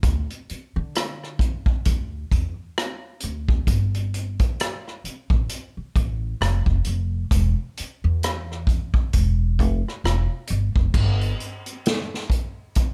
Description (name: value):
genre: R&B, neo-soul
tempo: 66 BPM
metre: 4/4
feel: swing 58% on 16ths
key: unclear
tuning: A4 = 443 Hz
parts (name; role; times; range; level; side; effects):
- upright bass; bass; 0.0-12.8 s; E1 to D3; -25 LUFS; equal; none
- unplugged drum kit; drums; 0.0-12.9 s; crash cymbal, hi-hat, kick drum, rim click, snare drum; -25 LUFS; equal; none
room: little or no reverb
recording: none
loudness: -24 LUFS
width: mono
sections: 0.0-10.9 A section; 10.9-12.9 B section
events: none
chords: none